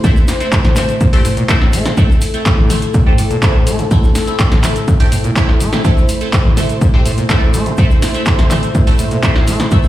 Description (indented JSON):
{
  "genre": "acid house",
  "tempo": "124 BPM",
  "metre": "4/4",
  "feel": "straight",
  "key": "A phrygian",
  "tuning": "A4 = 437 Hz",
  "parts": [
    { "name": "warm analog pad", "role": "sustained chords", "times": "0.0-9.9 s", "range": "A3 to D5", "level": "-20 LUFS", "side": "equal", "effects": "chorus, sidechain pumping" },
    { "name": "acid bass, saw", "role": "riff", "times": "0.0-9.8 s", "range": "A2 to A3", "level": "-18 LUFS", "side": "equal", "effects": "overdrive, wide subtle chorus, sidechain pumping, ping-pong delay" },
    { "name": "band-passed chord stab", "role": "stabs", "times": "0.0-9.8 s", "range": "A3 to G4", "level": "-22 LUFS", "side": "right 1 dB", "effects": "phaser, wide subtle chorus, ping-pong delay" },
    { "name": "breakbeat sampler-style drum kit", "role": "drums", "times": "0.0-9.9 s", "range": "hi-hat, shaker, snare drum", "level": "-31 LUFS", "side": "equal", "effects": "none" },
    { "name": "electronic kick drum", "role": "drums", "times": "0.0-9.8 s", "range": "none", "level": "-12 LUFS", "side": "equal", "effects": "none" },
    { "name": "punchy analog drum machine", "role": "drums", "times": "0.0-9.8 s", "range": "handclaps, hi-hat, snare drum, toms", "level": "-19 LUFS", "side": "equal", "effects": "none" },
    { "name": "egg shaker", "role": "percussion", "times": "0.0-9.9 s", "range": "none", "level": "-34 LUFS", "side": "left 1 dB", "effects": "none" }
  ],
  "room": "light reverb, digital ambience",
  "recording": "played on a big sound system in a bare room, large studio reverb",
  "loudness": "-10 LUFS",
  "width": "side -14 dB against mid",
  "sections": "0.0-9.9 A section",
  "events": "none",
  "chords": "0.0 Am",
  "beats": "| 0.04 0.52 1.01 1.49 | 1.97 2.46 2.94 3.43 | 3.91 4.39 4.88 5.36 | 5.84 6.33 6.81 7.30 | 7.78 8.27 8.75 9.23 | 9.72"
}